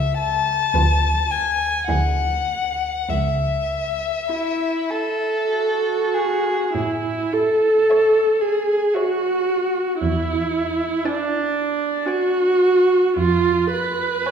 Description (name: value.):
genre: classical, slow romantic movement for string quartet.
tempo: 48-59 BPM.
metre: 3/4.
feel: rubato.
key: A major.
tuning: A4 = 440 Hz.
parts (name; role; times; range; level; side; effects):
warm violin; melody; 0.0-14.3 s; E5 to A5; -22 LUFS; left 6 dB; none.
rich violin; second line; 0.0-14.3 s; E4 to D5; -25 LUFS; right 1 dB; none.
rich viola; accompaniment; 0.0-14.3 s; D4 to B4; -18 LUFS; right 2 dB; none.
warm cello; bass; 0.0-14.1 s; C#2 to A2; -24 LUFS; right 2 dB; none.
room: wet recital hall reverb, RT60 1.8 s.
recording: heard from further back in the room.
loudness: -18 LUFS.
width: side -7 dB against mid.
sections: 0.0-6.8 A section; 6.8-14.3 A section.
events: none.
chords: 0.0 A/C#; 0.7 Bm7b5/D; 1.9 E7/D; 3.1 A/C#; 6.8 A; 10.0 E9; 13.2 C#7/E# (rootless).